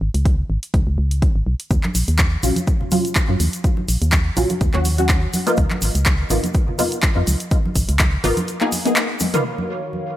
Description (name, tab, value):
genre	deep house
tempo	124 BPM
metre	4/4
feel	swing 54% on 16ths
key	Eb minor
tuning	A4 = 440 Hz
part	organ-like FM bass	bass	0.0-8.3 s	Ab1 to Gb2	-19 LUFS	equal	none
part	punchy analog drum machine	drums	0.1-9.6 s	crash cymbal, handclaps, hi-hat, toms	-23 LUFS	equal	overdrive, low-pass filter on hats, small room reverb, low-pass filter on snare, low-pass filter on toms, low-pass filter on cymbals
part	electronic kick drum	drums	0.3-8.1 s	none	-18 LUFS	equal	overdrive, small room reverb
part	egg shaker	percussion	1.7-9.4 s	none	-30 LUFS	left 3 dB	none
part	congas	percussion	1.8-10.0 s	none	-28 LUFS	right 1 dB	sidechain pumping on perc
part	filtered dub chord stab	stabs	2.4-9.4 s	Gb3 to Ab4	-22 LUFS	equal	phaser, ensemble chorus, vintage 12-bit sampler grit, sidechain pumping, digital delay
part	hollow soft pad	sustained chords	9.4-10.2 s	Eb3 to F5	-27 LUFS	equal	chorus, sidechain pumping
room	light reverb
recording	none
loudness	-16 LUFS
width	side -13 dB against mid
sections	0.0-9.4 A section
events	drum fill 9.2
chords	0.0 Db5; 1.7 Ebm9; 5.3 Db13; 9.4 Ebm9